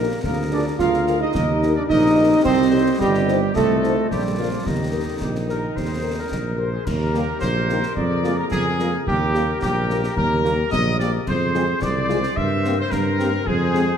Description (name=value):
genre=military-style march for wind band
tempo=109 BPM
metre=2/4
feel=straight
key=Eb major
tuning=A4 = 440 Hz
part: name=clear trumpet section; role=melody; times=0.0-14.0 s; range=Eb4 to F5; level=-26 LUFS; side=equal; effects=none
part: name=mellow woodwind section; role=second line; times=0.0-14.0 s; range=F4 to Eb5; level=-29 LUFS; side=left 2 dB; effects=none
part: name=mellow French horn section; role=accompaniment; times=0.0-13.8 s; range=Ab3 to D5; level=-29 LUFS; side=left 5 dB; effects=none
part: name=dark trombone section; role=sustained chords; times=0.0-13.8 s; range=Eb3 to F4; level=-22 LUFS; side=right 2 dB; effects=none
part: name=mellow tuba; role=bass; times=0.0-13.9 s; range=G1 to G2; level=-23 LUFS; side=right 2 dB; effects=none
part: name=concert snare drum, concert bass drum and clash cymbals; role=drums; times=0.2-13.9 s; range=none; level=-29 LUFS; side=left 1 dB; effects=none
room=moderate scoring stage reverb, RT60 1.6 s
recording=none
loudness=-18 LUFS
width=side -8 dB against mid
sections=0.0-6.9 A section; 6.9-14.0 B section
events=none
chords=0.2 Bb7/D; 1.3 Eb; 2.5 Cm; 3.6 F7/C; 4.1 Bb; 4.7 Eb; 8.0 Bb5/F; 9.1 Eb; 11.3 Fm; 12.4 C5/G; 13.5 Fm